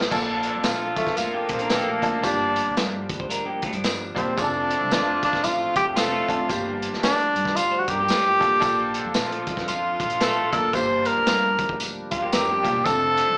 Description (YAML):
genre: uptempo 1960s-style soul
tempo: 113 BPM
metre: 4/4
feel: swing 60% on 8ths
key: Bb major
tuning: A4 = 440 Hz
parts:
  - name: clear saxophone section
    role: second line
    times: 0.0-13.3 s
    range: D3 to A4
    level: -32 LUFS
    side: equal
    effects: slapback echo
  - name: bright tonewheel organ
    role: sustained chords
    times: 0.0-13.4 s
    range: F3 to A4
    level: -37 LUFS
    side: equal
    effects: overdrive, slow rotary speaker
  - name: upright bass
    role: bass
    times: 0.0-13.4 s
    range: E1 to Bb2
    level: -38 LUFS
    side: equal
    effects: none
  - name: crunchy breakbeat drum kit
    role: drums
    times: 0.0-13.3 s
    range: crash cymbal, hi-hat, kick drum, snare drum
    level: -30 LUFS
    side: equal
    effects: none
  - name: bright upright piano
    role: accompaniment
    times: 0.1-13.4 s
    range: Bb3 to Bb4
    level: -30 LUFS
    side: equal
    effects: slapback echo
  - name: tambourine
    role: percussion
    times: 0.1-13.0 s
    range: none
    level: -39 LUFS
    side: equal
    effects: none
  - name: breathy tenor saxophone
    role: melody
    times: 1.0-13.4 s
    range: A3 to C5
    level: -24 LUFS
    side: equal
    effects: none
  - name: electric guitar through a small old amp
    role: riff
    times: 1.2-8.6, 12.2-12.9 s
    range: F3 to C5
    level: -33 LUFS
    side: equal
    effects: slapback echo
room: light reverb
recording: live gig heard through the venue's PA, club reverb, small speaker sound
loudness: -23 LUFS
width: mono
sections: 0.1-13.4 A section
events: tenor saxophone solo 0.1-13.4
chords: 0.1 Bbmaj7; 2.2 Gm7; 4.4 Dm7/F; 6.5 Gm7; 8.6 Bbmaj7; 10.7 Gm7; 12.9 Dm7/F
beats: | 0.11 0.65 1.18 1.71 | 2.24 2.77 3.30 3.83 | 4.37 4.90 5.43 5.96 | 6.49 7.02 7.55 8.08 | 8.61 9.14 9.68 10.21 | 10.74 11.27 11.80 12.33 | 12.86